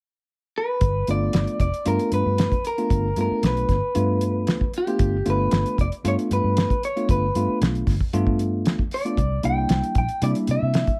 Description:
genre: straight-eighth soul blues.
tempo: 115 BPM.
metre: 4/4.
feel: straight.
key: G mixolydian.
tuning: A4 = 440 Hz.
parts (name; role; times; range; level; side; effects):
electric guitar through a small old amp; melody; 0.6-11.0 s; G4 to G5; -28 LUFS; equal; plate reverb.
vintage muted fingered electric bass; bass; 0.8-10.8 s; F1 to C3; -26 LUFS; equal; none.
cloth-damped thuddy drum kit; drums; 0.8-11.0 s; hi-hat, kick drum, snare drum; -26 LUFS; equal; none.
tine electric piano; accompaniment; 1.1-10.9 s; G3 to F4; -28 LUFS; equal; plate reverb.
room: light reverb.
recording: none.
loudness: -22 LUFS.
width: mono.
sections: 0.8-11.0 A section.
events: none.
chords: 0.0 N.C.; 0.8 G9; 9.2 C9.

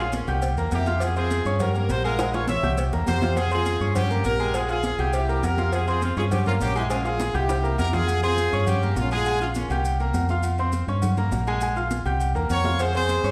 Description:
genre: latin, salsa.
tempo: 204 BPM.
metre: 4/4.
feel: straight.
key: F harmonic minor.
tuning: A4 = 440 Hz.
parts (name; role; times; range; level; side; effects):
brilliant horn section; melody; 0.0-9.8, 12.5-13.3 s; Bb3 to E5; -29 LUFS; equal; none.
bright concert grand piano; accompaniment; 0.0-13.3 s; Ab3 to G6; -31 LUFS; equal; none.
deep dub fingered electric bass; bass; 0.0-13.3 s; Bb1 to G2; -27 LUFS; equal; none.
congas; percussion; 0.1-13.2 s; none; -35 LUFS; equal; none.
cowbell and bongos; percussion; 0.1-8.1, 12.8-13.2 s; none; -35 LUFS; equal; none.
maracas; percussion; 0.1-13.3 s; none; -46 LUFS; equal; none.
agogo bells and timbales; percussion; 0.3-13.2 s; none; -35 LUFS; equal; none.
room: wet recital hall reverb, RT60 1.4 s.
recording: recorded in a church or concert hall.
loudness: -24 LUFS.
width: mono.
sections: 0.0-8.1 A section; 8.1-13.3 A section.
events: drum fill 2.2-3.4, 7.2-8.1, 12.4-12.8.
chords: 0.4 C7; 1.0 Fm; 1.6 Gm7b5; 2.2 Bbm7; 2.8 C7; 3.4 Fm; 4.0 Gdim; 4.5 Bb5; 5.1 C7; 5.7 F5; 6.3 Gdim; 6.9 Bbm7; 7.5 C7; 8.1 Fm; 8.7 Gm7b5; 9.3 Bbm7; 9.8 C5; 10.4 F5; 11.0 Gdim; 11.6 Bb5; 12.2 C7; 12.8 Fm.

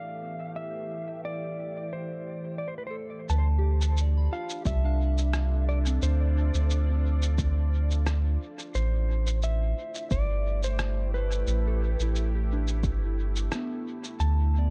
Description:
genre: ambient dub.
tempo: 88 BPM.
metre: 4/4.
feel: swing 54% on 16ths.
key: unclear.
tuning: A4 = 440 Hz.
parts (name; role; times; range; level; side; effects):
clean lap steel guitar; melody; 0.0-14.7 s; B4 to A5; -39 LUFS; equal; vintage 12-bit sampler grit, dub echo.
deep dark ambient pad; sustained chords; 0.0-14.7 s; E3 to D5; -42 LUFS; equal; chorus, built-in reverb.
soft synth bell; arpeggios; 0.0-14.7 s; B3 to B5; -42 LUFS; equal; chorus, tape echo.
soft dub sub bass; bass; 3.3-14.7 s; G1 to D2; -27 LUFS; equal; none.
electronic shaker and rim click; drums; 3.3-14.3 s; none; -39 LUFS; equal; dub echo.
electronic kick drum; drums; 4.7-13.0 s; none; -32 LUFS; equal; overdrive.
room: digital ambience.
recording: dark, warm production.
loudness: -28 LUFS.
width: mono.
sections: 0.0-3.3 A section; 3.3-14.7 B section.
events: none.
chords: 0.0 Am7; 3.3 Dm7; 8.7 Am7; 14.2 D5.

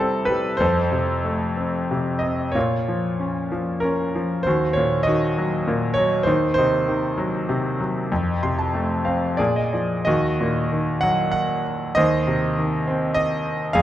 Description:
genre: classical, lyrical solo piano.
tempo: 88-103 BPM.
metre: 3/4.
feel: rubato.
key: Bb harmonic minor.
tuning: A4 = 440 Hz.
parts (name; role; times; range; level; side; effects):
bright concert grand piano; solo; 0.0-13.8 s; Eb2 to C6; -19 LUFS; equal; none.
room: light reverb.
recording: dark, warm production.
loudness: -19 LUFS.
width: side -12 dB against mid.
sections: 0.0-10.1 A section; 10.1-13.8 B section.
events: grand piano fill 8.1-10.1.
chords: 0.0 C; 0.6 F; 2.6 Bbm; 4.5 Ebm; 6.3 Cdim/Eb; 8.1 F; 9.4 Bb7; 10.1 Ebm; 12.0 Cm/Eb.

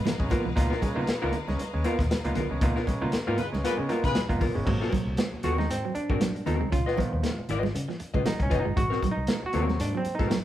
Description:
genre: funk.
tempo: 117 BPM.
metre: 4/4.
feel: swing 56% on 16ths.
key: unclear.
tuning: A4 = 439 Hz.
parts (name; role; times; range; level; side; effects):
rich studio string section; sustained chords; 0.0-4.6 s; Cb5 to Bb5; -40 LUFS; left 2 dB; none.
vintage muted fingered electric bass; bass; 0.0-10.3 s; F1 to Db3; -31 LUFS; equal; none.
vintage hollow-body jazz guitar; accompaniment; 0.1-10.4 s; Cb4 to Eb5; -32 LUFS; left 3 dB; none.
clean electric guitar; riff; 0.1-0.5, 4.7-10.4 s; F3 to Db4; -34 LUFS; right 6 dB; none.
overdriven clav; stabs; 0.1-10.4 s; C3 to Gb4; -31 LUFS; right 2 dB; none.
crunchy breakbeat drum kit; drums; 0.1-10.4 s; crash cymbal, hi-hat, kick drum, snare drum; -29 LUFS; equal; none.
congas; percussion; 0.1-10.4 s; none; -36 LUFS; right 2 dB; none.
mellow horn section; second line; 3.4-4.2 s; Ab3 to Cb5; -32 LUFS; left 3 dB; none.
room: moderate large studio reverb, RT60 1.1 s.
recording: band playing live in one room.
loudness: -24 LUFS.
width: side -12 dB against mid.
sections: 0.0-4.7 A section; 4.7-10.4 B section.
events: band accent 2.6-4.7; clav solo 4.7-10.4.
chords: 0.0 Db13; 4.7 Ab9; 6.7 Db9; 8.8 Ab9.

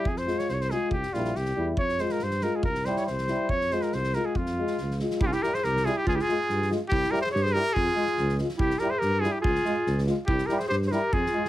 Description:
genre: balkan folk, Balkan brass band.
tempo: 141 BPM.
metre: 2/4.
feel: swing 54% on 16ths.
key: F harmonic minor.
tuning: A4 = 441 Hz.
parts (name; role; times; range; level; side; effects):
warm trumpet; melody; 0.0-11.5 s; F4 to Db5; -28 LUFS; equal; none.
clear euphonium; accompaniment; 0.0-11.4 s; G3 to Ab3; -34 LUFS; right 3 dB; none.
mellow French horn; accompaniment; 0.0-11.4 s; E4 to F4; -32 LUFS; left 4 dB; none.
mellow tuba; bass; 0.1-11.2 s; Bb1 to G2; -30 LUFS; equal; none.
oversized low-tuned drum kit; percussion; 0.1-11.5 s; kick drum, snare drum; -33 LUFS; equal; none.
mellow clarinet; second line; 5.2-11.5 s; Db4 to Ab4; -30 LUFS; right 1 dB; none.
room: light reverb.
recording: heavily compressed radio sound.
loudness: -24 LUFS.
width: side -14 dB against mid.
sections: 0.0-5.2 A section; 5.2-11.5 B section.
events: none.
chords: 0.1 Fm; 0.9 C; 1.8 Fm; 2.6 C; 3.5 Fm; 5.2 C; 6.1 Db; 6.9 C; 7.8 Fm; 8.6 C; 9.5 Db; 10.3 C.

